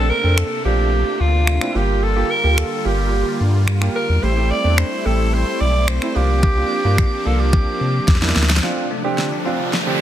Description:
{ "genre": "dance-pop", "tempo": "109 BPM", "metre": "4/4", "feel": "straight", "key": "G dorian", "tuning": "A4 = 442 Hz", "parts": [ { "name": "raspy alto saxophone", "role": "melody", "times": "0.0-8.4 s", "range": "F4 to D5", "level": "-22 LUFS", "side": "right 1 dB", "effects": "dub echo" }, { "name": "warm grand piano", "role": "accompaniment", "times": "0.0-10.0 s", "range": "A3 to A4", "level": "-25 LUFS", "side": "right 6 dB", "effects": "sidechain pumping" }, { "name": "supersaw chords", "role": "sustained chords", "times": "0.0-10.0 s", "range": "C3 to F4", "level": "-26 LUFS", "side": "left 1 dB", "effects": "sidechain pumping" }, { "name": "warm sub bass", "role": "bass", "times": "0.0-8.6 s", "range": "G1 to C3", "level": "-17 LUFS", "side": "equal", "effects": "sidechain pumping" }, { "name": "pop drum kit", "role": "drums", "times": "0.4-9.9 s", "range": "finger snaps, kick drum, snare drum", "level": "-20 LUFS", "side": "equal", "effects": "soft clipping on snare" }, { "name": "bell-like tine electric piano", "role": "arpeggios", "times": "8.6-10.0 s", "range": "D3 to D4", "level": "-28 LUFS", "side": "left 8 dB", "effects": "sidechain pumping, dub echo" }, { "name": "riser", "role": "sound effects", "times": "9.0-10.0 s", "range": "none", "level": "-26 LUFS", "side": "right 1 dB", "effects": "none" } ], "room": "light reverb", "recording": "dense, heavily limited modern master", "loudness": "-15 LUFS", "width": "side -11 dB against mid", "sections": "0.0-8.6 A section; 8.6-10.0 B section", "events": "drum fill 8.1-8.6, 8.6-10.0; build-up 8.6-10.0; riser 9.0-10.0", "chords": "0.0 Bbmaj9; 1.8 Gm7; 4.2 Am7; 6.2 C9sus4; 8.6 Dm7", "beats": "0.38 0.93 1.48 | 2.03 2.58 3.13 3.68 | 4.23 4.78 5.33 5.88 | 6.43 6.98 7.53 8.08 | 8.63 9.18 9.73" }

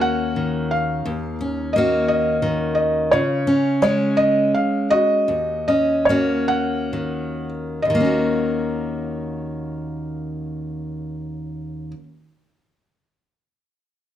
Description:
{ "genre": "folk", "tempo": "42-58 BPM (dotted quarters)", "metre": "6/8", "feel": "straight", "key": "Eb minor", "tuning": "A4 = 440 Hz", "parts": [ { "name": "felt-muted upright piano", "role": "melody", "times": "0.0-11.9 s", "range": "F4 to Gb5", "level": "-20 LUFS", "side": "equal", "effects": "none" }, { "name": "fingerpicked steel-string acoustic guitar", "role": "accompaniment", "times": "0.0-12.1 s", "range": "Eb2 to Gb4", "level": "-22 LUFS", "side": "left 1 dB", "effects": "none" } ], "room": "light reverb", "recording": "dark, warm production", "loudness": "-18 LUFS", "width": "side -11 dB against mid", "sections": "0.0-7.8 A section; 7.8-13.5 B section", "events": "slowing down 3.1-7.8", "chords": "0.0 Ebm7; 3.1 Db; 5.3 Ebm7", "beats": "| 1.04 2.07 | 3.11 4.17 | 5.28 6.49 | 7.84 9.27 | 10.68 12.10" }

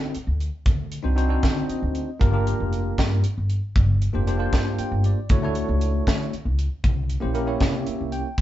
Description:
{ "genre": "electric jazz fusion", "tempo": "78 BPM (dotted quarters)", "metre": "6/8", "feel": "straight", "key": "unclear", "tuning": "A4 = 440 Hz", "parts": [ { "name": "bell-like tine electric piano", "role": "accompaniment", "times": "0.0-8.4 s", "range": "A3 to G5", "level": "-26 LUFS", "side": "equal", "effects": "fast stereo tremolo" }, { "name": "upright bass", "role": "bass", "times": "0.0-8.4 s", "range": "F1 to D3", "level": "-24 LUFS", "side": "equal", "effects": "none" }, { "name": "crisp fusion drum kit", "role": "drums", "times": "0.1-8.4 s", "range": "hi-hat, kick drum, snare drum", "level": "-22 LUFS", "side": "equal", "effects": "none" } ], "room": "moderate studio reverb, RT60 0.8 s", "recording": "band playing live in one room, nothing above 7.7 kHz", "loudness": "-20 LUFS", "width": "side -13 dB against mid", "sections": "0.0-8.4 A section", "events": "tine electric piano fill 1.4-2.2, 4.5-5.3, 7.6-8.4", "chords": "0.0 D7b9; 2.2 Gm7; 5.3 Dmaj9; 6.8 C7b9", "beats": "| 0.66 1.43 | 2.21 2.98 | 3.75 4.53 | 5.30 6.07 | 6.85 7.62 | 8.39" }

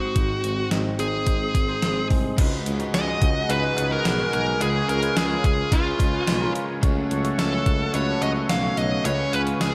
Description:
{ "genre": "1980s-style pop", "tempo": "108 BPM", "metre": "4/4", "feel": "straight", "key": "unclear", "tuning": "A4 = 442 Hz", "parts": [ { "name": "dark smooth lead guitar", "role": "melody", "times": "0.0-9.7 s", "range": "F4 to F5", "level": "-28 LUFS", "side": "equal", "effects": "overdrive, tape echo" }, { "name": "bell-like tine electric piano", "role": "accompaniment", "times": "0.0-9.7 s", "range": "Ab2 to Eb5", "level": "-30 LUFS", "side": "equal", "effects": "none" }, { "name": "warm tuba", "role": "bass", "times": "0.2-9.7 s", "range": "Ab1 to Db2", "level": "-30 LUFS", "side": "equal", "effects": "none" }, { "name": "gated 80s digital drum machine", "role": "drums", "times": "0.2-9.7 s", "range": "crash cymbal, hi-hat, kick drum, snare drum, tambourine", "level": "-26 LUFS", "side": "equal", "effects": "gated reverb, gated reverb snare, overdrive" }, { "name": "overdriven electric guitar", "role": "accompaniment", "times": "2.4-9.7 s", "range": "Db3 to Ab4", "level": "-36 LUFS", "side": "equal", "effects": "none" }, { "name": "phased analog pad", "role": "sustained chords", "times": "2.4-9.7 s", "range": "Ab4 to Db6", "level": "-34 LUFS", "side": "equal", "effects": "phaser, chorus" }, { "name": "cowbell", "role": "percussion", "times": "2.4-9.7 s", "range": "none", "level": "-43 LUFS", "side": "equal", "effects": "none" } ], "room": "wet lush hall reverb, RT60 2.1 s", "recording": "dreamy mix soaked in reverb", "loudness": "-23 LUFS", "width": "mono", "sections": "0.0-2.4 A section; 2.4-9.7 B section", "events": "none", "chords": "0.0 Ab; 2.4 Abm7/Db; 4.6 Db7; 6.8 Gbm/Db; 9.0 Db7", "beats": "| 0.16 0.72 1.27 1.83 | 2.38 2.94 3.49 4.05 | 4.61 5.16 5.72 6.27 | 6.83 7.38 7.94 8.49 | 9.05 9.61" }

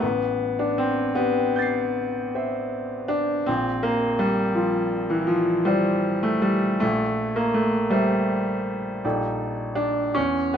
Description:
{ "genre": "classical, impressionist solo piano", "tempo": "53 BPM (dotted quarters)", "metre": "9/8", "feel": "uneven beats, rubato", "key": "unclear", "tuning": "A4 = 439 Hz", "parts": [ { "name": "clear baby grand piano", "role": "solo", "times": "0.0-10.6 s", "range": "A1 to C7", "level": "-21 LUFS", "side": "equal", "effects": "none" } ], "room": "wet recital hall reverb, RT60 1.6 s", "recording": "close, detailed microphones", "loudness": "-21 LUFS", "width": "side -8 dB against mid", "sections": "0.0-10.6 A section", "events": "none", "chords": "0.0 Am9; 3.5 Bbadd9; 6.8 C7/Bb; 9.0 Ebmaj7#11/Bb", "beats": "| 0.02 1.17 2.35 | 3.48 4.57 5.68 | 6.82 7.92 9.04 | 10.17" }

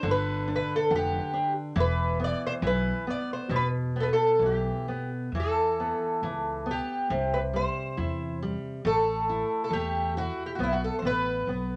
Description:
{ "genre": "fado-style ballad", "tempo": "68 BPM", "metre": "2/4", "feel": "rubato", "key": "E minor", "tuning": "A4 = 445 Hz", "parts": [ { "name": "fingerpicked twelve-string acoustic guitar", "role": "melody", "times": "0.0-11.8 s", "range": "E4 to D5", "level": "-30 LUFS", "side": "equal", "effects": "none" }, { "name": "nylon-string guitar", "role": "accompaniment", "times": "0.0-11.8 s", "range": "B2 to F#5", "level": "-35 LUFS", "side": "equal", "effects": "none" }, { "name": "upright bass", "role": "bass", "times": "0.0-11.8 s", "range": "E1 to E2", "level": "-34 LUFS", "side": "equal", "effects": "none" } ], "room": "light reverb", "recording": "nothing above 10.4 kHz", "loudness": "-28 LUFS", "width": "mono", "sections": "0.0-5.3 A section; 5.3-11.8 B section", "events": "none", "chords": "0.0 G5; 1.7 E5; 7.1 C; 8.8 A5; 10.6 N.C.", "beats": "| 0.03 0.90 | 1.75 2.61 | 3.49 4.39 | 5.32 6.22 | 7.09 7.96 | 8.83 9.70 | 10.58 11.46" }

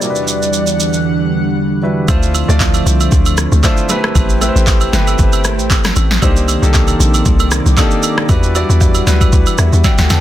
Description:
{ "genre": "amapiano", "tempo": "116 BPM", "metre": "4/4", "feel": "swing 55% on 16ths", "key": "unclear", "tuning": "A4 = 440 Hz", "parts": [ { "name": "warm velvety synth lead", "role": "melody", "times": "0.0-1.6 s", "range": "D5", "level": "-21 LUFS", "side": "left 1 dB", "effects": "chorus, tape echo" }, { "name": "warm grand piano", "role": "accompaniment", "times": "0.0-10.2 s", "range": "F#3 to A5", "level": "-19 LUFS", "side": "left 1 dB", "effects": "none" }, { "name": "lush unison pad", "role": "sustained chords", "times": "0.0-10.2 s", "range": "E2 to F#5", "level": "-19 LUFS", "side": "right 2 dB", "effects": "chorus, sidechain pumping" }, { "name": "deep house drum kit", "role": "drums", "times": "0.0-10.2 s", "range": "handclaps, kick drum, rim click, shaker, snare drum", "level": "-14 LUFS", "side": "equal", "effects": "soft clipping on snare" }, { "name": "hollow log drum bass", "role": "bass", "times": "2.1-10.2 s", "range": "G1 to E2", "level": "-13 LUFS", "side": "equal", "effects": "none" }, { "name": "agogo bells and woodblock", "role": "percussion", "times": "2.1-10.2 s", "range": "none", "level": "-24 LUFS", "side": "right 7 dB", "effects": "none" } ], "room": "little or no reverb", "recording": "dense, heavily limited modern master", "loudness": "-10 LUFS", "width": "side -13 dB against mid", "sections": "0.0-2.1 A section; 2.1-10.2 B section", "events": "grand piano fill 9.3-10.2; drum fill 9.8-10.2", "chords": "0.0 Em9; 2.1 Dm9; 3.9 Am9; 6.2 Cm9; 8.3 Em9", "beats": "| 0.01 0.53 1.05 1.57 | 2.08 2.60 3.12 3.64 | 4.15 4.67 5.19 5.71 | 6.22 6.74 7.26 7.77 | 8.29 8.81 9.33 9.84" }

